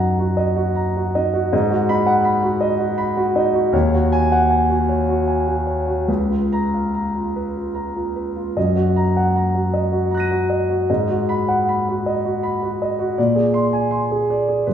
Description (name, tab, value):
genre	classical, impressionist solo piano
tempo	71-83 BPM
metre	3/4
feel	rubato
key	F# major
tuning	A4 = 440 Hz
part	warm concert grand piano	solo	0.0-14.7 s	C#2 to D#7	-17 LUFS	equal	none
room	wet stone room reverb, RT60 1.3 s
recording	heard from further back in the room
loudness	-17 LUFS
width	side -9 dB against mid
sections	0.0-14.7 A section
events	none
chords	0.0 F#6; 1.5 G#m7; 3.7 D#m7; 6.1 C#6; 8.6 F#6; 10.9 G#m7; 13.2 A#9